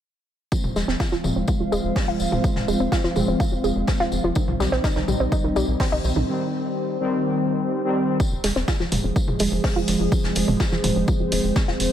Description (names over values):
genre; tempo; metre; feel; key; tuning
melodic techno; 125 BPM; 4/4; straight; F minor; A4 = 436 Hz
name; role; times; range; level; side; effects
dark analog pad; sustained chords; 1.2-11.9 s; F3 to F5; -26 LUFS; right 2 dB; chorus, sidechain pumping
analog pluck; arpeggios; 0.5-11.7 s; Eb3 to F4; -27 LUFS; right 1 dB; chorus, sidechain pumping, dub echo
analog synth brass; stabs; 0.5-8.2 s; Eb3 to C4; -25 LUFS; left 1 dB; chorus, sidechain pumping, dub echo
electronic kick drum; drums; 0.5-11.7 s; none; -22 LUFS; equal; overdrive
vintage brush drum kit; drums; 0.5-11.9 s; hi-hat, snare drum, tambourine; -33 LUFS; left 2 dB; sidechain pumping on hats, high-pass filter on hats, high-pass filter on snare, sidechain pumping on perc, high-pass filter on perc, high-pass filter on room
tight sequencer bass; bass; 0.6-11.9 s; F1 to C2; -27 LUFS; equal; sidechain pumping
punchy analog drum machine; drums; 0.6-11.9 s; hi-hat, toms; -29 LUFS; equal; none
room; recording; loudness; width
light reverb, studio ambience; none; -20 LUFS; side -10 dB against mid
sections
0.5-8.2 A section; 8.2-11.9 B section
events
filter sweep on synth arpeggio sound 0.5-8.2; filter sweep on analog polysynth 0.5-8.2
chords
0.5 Fm; 4.4 Cm; 8.2 Fm